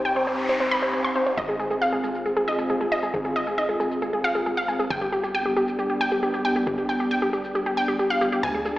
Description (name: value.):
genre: uplifting trance.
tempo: 136 BPM.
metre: 4/4.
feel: straight.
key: unclear.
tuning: A4 = 440 Hz.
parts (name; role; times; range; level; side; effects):
lush unison pad; sustained chords; 0.0-8.8 s; D3 to C5; -28 LUFS; equal; chorus.
plucky analog bass; bass; 0.0-8.8 s; G1 to D2; -42 LUFS; equal; none.
noise sweep; sound effects; 0.0-1.4 s; none; -30 LUFS; equal; none.
wide unison pluck; melody; 0.1-8.8 s; G4 to C6; -23 LUFS; equal; dub echo.
shaker; drums; 0.1-8.8 s; none; -47 LUFS; equal; none.
room: wet lush hall reverb, RT60 2.1 s.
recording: played on a big sound system in a bare room, large studio reverb, small speaker sound.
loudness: -22 LUFS.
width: side -16 dB against mid.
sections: 0.0-8.8 A section.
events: noise sweep 0.0-1.4.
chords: 0.0 Cm; 1.4 Ab6; 4.9 G.